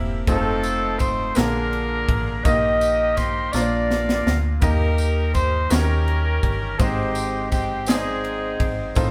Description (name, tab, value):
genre	slow gospel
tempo	55 BPM (dotted quarters)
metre	6/8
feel	straight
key	Eb major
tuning	A4 = 440 Hz
part	clear horn section	melody	0.0-9.1 s	C4 to Eb5	-26 LUFS	equal	none
part	warm concert grand piano	accompaniment	0.0-9.1 s	Ab2 to Eb5	-28 LUFS	equal	none
part	metallic FM bass	bass	0.0-9.1 s	E1 to Eb2	-27 LUFS	equal	none
part	crisp fusion drum kit	drums	0.3-9.1 s	kick drum, ride cymbal, snare drum	-26 LUFS	equal	none
part	tambourine	percussion	0.3-9.1 s	none	-40 LUFS	equal	none
room	light reverb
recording	band playing live in one room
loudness	-21 LUFS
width	mono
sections	0.0-9.1 A section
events	drum fill 3.5-4.6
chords	0.3 F7; 1.4 Bb7; 2.5 Eb/Bb; 3.5 Bb; 4.6 Eb; 5.7 Eb7; 6.8 Ab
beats	| 0.28 1.37 | 2.46 3.54 | 4.63 5.71 | 6.80 7.88 | 8.96